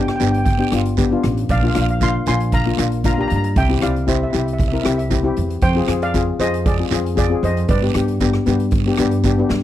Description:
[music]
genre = calypso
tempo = 116 BPM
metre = 4/4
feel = straight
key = unclear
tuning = A4 = 440 Hz
[part]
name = steel pan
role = melody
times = 0.0-9.2 s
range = Ab4 to C6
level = -24 LUFS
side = right 1 dB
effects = none
[part]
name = steel pan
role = accompaniment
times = 0.0-9.6 s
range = Bb3 to Bb4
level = -20 LUFS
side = left 4 dB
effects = none
[part]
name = upright bass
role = bass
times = 0.0-9.6 s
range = G1 to G2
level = -20 LUFS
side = right 1 dB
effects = none
[part]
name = street-band drum kit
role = drums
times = 0.1-9.6 s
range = hi-hat, kick drum, rim click, snare drum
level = -22 LUFS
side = right 1 dB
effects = none
[part]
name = guiro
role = percussion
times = 0.2-9.4 s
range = none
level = -30 LUFS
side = right 18 dB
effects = none
[sound]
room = little or no reverb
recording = dry, close 1970s-style studio recording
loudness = -15 LUFS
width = side -12 dB against mid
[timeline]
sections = 0.0-9.6 A section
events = none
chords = 0.0 G; 1.5 Bb; 3.6 C; 5.6 Fm; 7.7 G

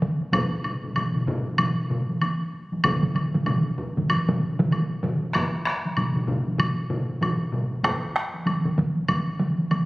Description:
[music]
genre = japanese traditional, taiko drum ensemble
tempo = 96 BPM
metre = 4/4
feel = swing 60% on 16ths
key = none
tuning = none
[part]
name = taiko ensemble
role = percussion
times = 0.0-9.9 s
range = none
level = -24 LUFS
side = right 1 dB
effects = none
[part]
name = taiko ensemble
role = percussion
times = 0.2-9.9 s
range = none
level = -28 LUFS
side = equal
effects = none
[part]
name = taiko ensemble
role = percussion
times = 0.3-7.7 s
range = none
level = -28 LUFS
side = left 1 dB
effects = none
[part]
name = taiko ensemble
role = percussion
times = 0.3-9.3 s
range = none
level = -32 LUFS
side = equal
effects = none
[part]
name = woodblock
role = percussion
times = 0.3-9.9 s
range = none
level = -27 LUFS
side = equal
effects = none
[sound]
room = wet recital hall reverb, RT60 1.5 s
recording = recorded on a phone in the room, club reverb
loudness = -22 LUFS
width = side -20 dB against mid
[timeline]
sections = 0.0-9.9 A section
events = none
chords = none

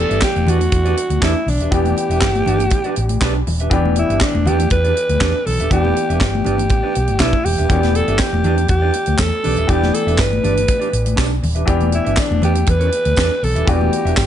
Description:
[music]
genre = disco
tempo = 120 BPM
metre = 4/4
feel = straight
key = E minor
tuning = A4 = 439 Hz
[part]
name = breathy alto saxophone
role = melody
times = 0.0-14.3 s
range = D4 to B4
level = -20 LUFS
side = right 1 dB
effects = none
[part]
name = clear grand piano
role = accompaniment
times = 0.0-14.3 s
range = E3 to G4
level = -25 LUFS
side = left 7 dB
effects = none
[part]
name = hollow-body short-scale fingered electric bass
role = bass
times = 0.0-14.3 s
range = D#1 to E2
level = -18 LUFS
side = equal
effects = none
[part]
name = mellow electric guitar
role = accompaniment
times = 0.1-14.2 s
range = D4 to E5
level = -25 LUFS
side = right 5 dB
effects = warbly pitch drift
[part]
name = tight funk drum kit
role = drums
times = 0.1-14.3 s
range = handclaps, hi-hat, kick drum, snare drum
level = -20 LUFS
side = right 1 dB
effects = none
[part]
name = congas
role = percussion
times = 0.2-14.3 s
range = none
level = -26 LUFS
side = left 5 dB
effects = none
[part]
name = tambourine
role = percussion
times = 8.2-14.3 s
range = none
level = -33 LUFS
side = right 10 dB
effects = none
[sound]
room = studio ambience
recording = nothing above 10.6 kHz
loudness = -14 LUFS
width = side -10 dB against mid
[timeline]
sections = 0.0-14.3 A section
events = none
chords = 0.0 Em7

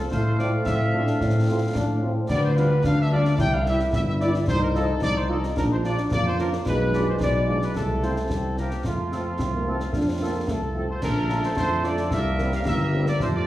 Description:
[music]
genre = military-style march for wind band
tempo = 110 BPM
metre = 2/4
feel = straight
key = F major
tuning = A4 = 438 Hz
[part]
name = clear trumpet section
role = melody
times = 0.0-13.5 s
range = F4 to G5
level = -28 LUFS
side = equal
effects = none
[part]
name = dark tuba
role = bass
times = 0.0-13.5 s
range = G1 to A2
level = -24 LUFS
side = equal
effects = none
[part]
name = warm woodwind section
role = second line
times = 0.1-13.5 s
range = D4 to F5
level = -33 LUFS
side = equal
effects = none
[part]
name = dark trombone section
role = sustained chords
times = 0.1-13.5 s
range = D3 to F4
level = -30 LUFS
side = right 1 dB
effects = none
[part]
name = concert snare drum, concert bass drum and clash cymbals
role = drums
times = 0.1-13.4 s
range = none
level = -30 LUFS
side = left 1 dB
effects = none
[part]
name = dark French horn section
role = accompaniment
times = 0.4-13.0 s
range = F3 to Bb4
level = -33 LUFS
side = left 1 dB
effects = none
[part]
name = warm euphonium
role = second line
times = 9.4-11.0 s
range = A3 to D4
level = -29 LUFS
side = right 1 dB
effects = none
[sound]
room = wet recital hall reverb, RT60 1.7 s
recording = heard from further back in the room, studio reverb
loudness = -21 LUFS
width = side -14 dB against mid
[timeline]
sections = 0.0-11.0 A section; 11.0-13.5 B section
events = none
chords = 0.1 F/A; 2.3 G7/D; 3.4 C; 4.5 F5/C; 5.6 Bb; 6.7 Bdim7; 7.8 F/C; 8.3 C7; 8.8 F; 11.0 Bbmaj7; 12.1 C5

